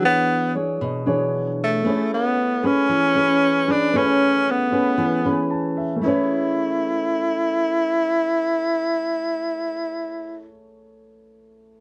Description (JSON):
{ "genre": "bossa nova", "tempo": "115 BPM", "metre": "4/4", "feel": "straight", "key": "A major", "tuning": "A4 = 443 Hz", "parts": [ { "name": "breathy tenor saxophone", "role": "melody", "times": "0.0-10.5 s", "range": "A3 to E4", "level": "-22 LUFS", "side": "equal", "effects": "none" }, { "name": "nylon-string guitar", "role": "accompaniment", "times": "0.0-10.6 s", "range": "B2 to C#5", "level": "-25 LUFS", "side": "equal", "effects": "none" }, { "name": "warm grand piano", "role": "accompaniment", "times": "0.0-11.8 s", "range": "E3 to A5", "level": "-33 LUFS", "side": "equal", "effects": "none" } ], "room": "light reverb", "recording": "nothing above 11.0 kHz", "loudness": "-21 LUFS", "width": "mono", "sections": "0.0-6.0 A section; 6.0-10.2 B section", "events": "grand piano fill 5.2-6.0", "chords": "0.0 E13; 1.9 Amaj9" }